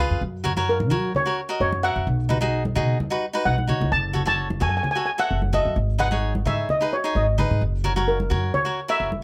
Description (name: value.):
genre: calypso.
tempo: 130 BPM.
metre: 4/4.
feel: straight.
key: unclear.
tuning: A4 = 441 Hz.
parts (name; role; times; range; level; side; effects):
cavaquinho; accompaniment; 0.0-9.1 s; D#4 to E#5; -29 LUFS; equal; none.
upright bass; bass; 0.0-9.2 s; F#1 to F#3; -26 LUFS; equal; none.
congas; percussion; 0.5-9.2 s; none; -32 LUFS; equal; none.
steel pan; melody; 0.7-9.2 s; A#4 to A5; -26 LUFS; equal; none.
room: light reverb.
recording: none.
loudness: -23 LUFS.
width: mono.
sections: 0.0-9.2 A section.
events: cavaquinho fill 0.0; drum fill 3.5-3.9.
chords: 0.2 F#7; 2.1 B; 3.9 F#m; 5.8 G#m; 7.6 F#.